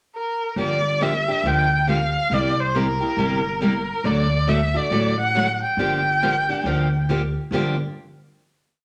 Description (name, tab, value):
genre	acoustic string swing (jazz manouche)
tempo	138 BPM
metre	4/4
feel	swing 62% on 8ths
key	G dorian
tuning	A4 = 440 Hz
part	clear erhu	melody	0.2-7.1 s	Bb4 to G5	-24 LUFS	equal	none
part	picked steel-string acoustic guitar	accompaniment	0.6-7.8 s	G2 to G4	-26 LUFS	equal	none
part	upright bass	bass	0.6-7.8 s	G1 to D2	-27 LUFS	equal	none
room	wet studio reverb, RT60 1.0 s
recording	none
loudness	-21 LUFS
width	mono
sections	0.0-0.6 pickup bar; 0.6-7.5 A section; 7.5-8.8 final chord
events	none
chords	0.0 N.C.; 0.6 Gm7; 2.3 C7; 4.0 D; 5.8 Gm7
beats	0.13 | 0.57 1.00 1.44 1.88 | 2.31 2.75 3.18 3.61 | 4.05 4.48 4.92 5.35 | 5.79 6.22 6.66 7.09 | 7.53